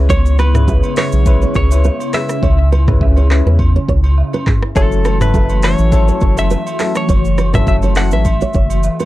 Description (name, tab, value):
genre	afrobeats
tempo	103 BPM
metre	4/4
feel	swing 55% on 16ths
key	F# minor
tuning	A4 = 439 Hz
part	warm grand piano	accompaniment	0.0-8.2 s	F#3 to B4	-21 LUFS	left 4 dB	plate reverb
part	hollow soft pad	sustained chords	0.0-9.1 s	C#3 to F#4	-22 LUFS	left 1 dB	ensemble chorus
part	round analog bass	bass	0.0-8.9 s	F#1 to E2	-13 LUFS	equal	none
part	direct-recorded clean electric guitar	melody	0.1-9.0 s	A4 to F#5	-22 LUFS	equal	plate reverb
part	nylon-string guitar	riff	0.1-9.1 s	G#4 to C#5	-23 LUFS	right 4 dB	none
part	afro-pop drum kit	drums	0.1-9.1 s	handclaps, hi-hat, kick drum, rim click, shaker, toms	-16 LUFS	equal	none
part	agogo bells and woodblock	percussion	0.1-9.1 s	none	-29 LUFS	right 4 dB	none
room	little or no reverb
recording	dark, warm production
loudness	-11 LUFS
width	side -16 dB against mid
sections	0.0-9.1 A section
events	hi-hats muted 2.4-4.8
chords	0.0 C#m7; 4.8 F#m7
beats	| 0.10 0.68 1.26 1.84 | 2.43 3.01 3.59 4.17 | 4.76 5.34 5.92 6.50 | 7.09 7.67 8.25 8.83